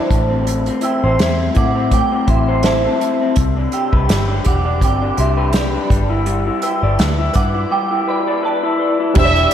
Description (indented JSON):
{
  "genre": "indie pop, bedroom pop",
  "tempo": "83 BPM",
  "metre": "4/4",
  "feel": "swing 55% on 16ths",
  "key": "unclear",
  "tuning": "A4 = 440 Hz",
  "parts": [
    { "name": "soft synth bell", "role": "second line", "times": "0.0-9.0 s", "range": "C5 to E6", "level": "-22 LUFS", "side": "right 4 dB", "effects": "ensemble chorus, diffuse ambient delay" },
    { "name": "electric guitar through a small old amp", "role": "accompaniment", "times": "0.0-9.5 s", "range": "A2 to D5", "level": "-19 LUFS", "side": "left 3 dB", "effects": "wide subtle chorus, vibrato effect" },
    { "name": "vintage muted picked electric bass", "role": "bass", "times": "0.1-9.5 s", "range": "E1 to A2", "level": "-18 LUFS", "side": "equal", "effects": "none" },
    { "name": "unplugged drum kit", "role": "drums", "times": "0.1-9.5 s", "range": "crash cymbal, hi-hat, kick drum, snare drum", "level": "-18 LUFS", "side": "equal", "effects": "none" },
    { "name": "warm upright piano", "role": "accompaniment", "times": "9.1-9.5 s", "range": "G3 to D5", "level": "-18 LUFS", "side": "right 4 dB", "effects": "cassette tape" },
    { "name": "warm trumpet", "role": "melody", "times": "9.2-9.5 s", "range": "E5", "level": "-14 LUFS", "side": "right 1 dB", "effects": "ensemble chorus, diffuse ambient delay" },
    { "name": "warm analog pad", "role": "sustained chords", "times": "9.2-9.5 s", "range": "D5 to E6", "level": "-26 LUFS", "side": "right 3 dB", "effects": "chorus, tremolo" }
  ],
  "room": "wet lush hall reverb, RT60 3.0 s",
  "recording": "dreamy mix soaked in reverb",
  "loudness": "-14 LUFS",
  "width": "side -9 dB against mid",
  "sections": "0.0-9.2 A section",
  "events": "none",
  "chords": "0.1 Am; 3.4 Cmaj9; 5.9 G6"
}